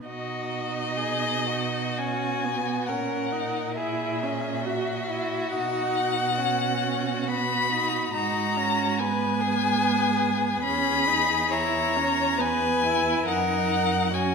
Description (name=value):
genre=classical, slow romantic movement for string quartet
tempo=57-74 BPM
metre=3/4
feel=rubato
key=B major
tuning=A4 = 440 Hz
part: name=warm viola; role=accompaniment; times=0.0-14.3 s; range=B3 to F#4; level=-30 LUFS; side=right 5 dB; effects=none
part: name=rich violin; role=melody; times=0.1-14.3 s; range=D#5 to B5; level=-26 LUFS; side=left 5 dB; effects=none
part: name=rich violin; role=second line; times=0.1-14.3 s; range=F#4 to C#5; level=-31 LUFS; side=left 1 dB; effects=none
part: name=warm cello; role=bass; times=0.1-14.3 s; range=E2 to B2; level=-31 LUFS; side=right 7 dB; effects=none
room=wet scoring stage reverb, RT60 1.6 s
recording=minimal, uncompressed stereo recording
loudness=-23 LUFS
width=side -5 dB against mid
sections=0.1-14.3 A section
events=none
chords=0.1 B; 2.9 F#7/A#; 5.5 B; 8.1 G#m7; 10.6 C#m7/E; 13.3 F#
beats=| 0.07 0.98 1.98 | 2.88 3.77 4.65 | 5.52 6.37 7.28 | 8.14 8.99 9.82 | 10.64 11.52 12.39 | 13.27 14.14